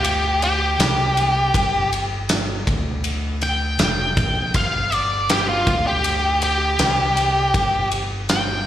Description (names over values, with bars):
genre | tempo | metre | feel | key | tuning
blues rock power trio and southern rock | 80 BPM | 4/4 | straight | unclear | A4 = 440 Hz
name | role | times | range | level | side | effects
octave-fuzz lead guitar | melody | 0.0-8.7 s | F4 to G5 | -20 LUFS | equal | distortion, slapback echo, digital delay
picked electric bass | bass | 0.0-8.6 s | F1 to D2 | -24 LUFS | equal | none
big rock drum kit | drums | 0.0-8.5 s | kick drum, ride cymbal, snare drum | -23 LUFS | equal | none
room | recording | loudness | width
little or no reverb | live gig heard through the venue's PA, recital hall reverb | -17 LUFS | side -11 dB against mid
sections
0.0-8.7 A section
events
lead electric guitar solo 0.0-8.7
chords
0.0 Dsus4; 0.8 C5; 1.5 N.C.; 2.7 Dsus4; 3.8 Bb5/F; 5.7 Dsus4; 6.8 C5; 7.5 N.C.